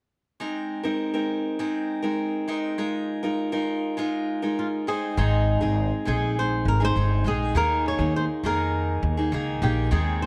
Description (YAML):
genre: acoustic pop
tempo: 101 BPM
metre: 4/4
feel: straight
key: Ab major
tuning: A4 = 440 Hz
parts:
  - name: picked steel-string acoustic guitar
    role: accompaniment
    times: 0.4-10.3 s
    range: Ab2 to C5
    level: -28 LUFS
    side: equal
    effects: none
  - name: flamenco guitar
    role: melody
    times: 4.6-10.3 s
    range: F4 to Db5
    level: -30 LUFS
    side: equal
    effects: none
  - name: upright bass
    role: bass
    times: 5.2-10.3 s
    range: G1 to F2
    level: -26 LUFS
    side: equal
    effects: none
room: light reverb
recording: cassette tape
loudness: -25 LUFS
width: mono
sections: 0.4-5.2 A section; 5.2-10.3 B section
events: none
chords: 0.4 Abadd9; 2.8 Ebsus2/Ab; 4.9 Ab; 7.5 Ebsus4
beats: | 0.41 1.00 1.60 2.20 | 2.79 3.39 3.98 4.58 | 5.17 5.76 6.36 6.95 | 7.54 8.14 8.73 9.32 | 9.91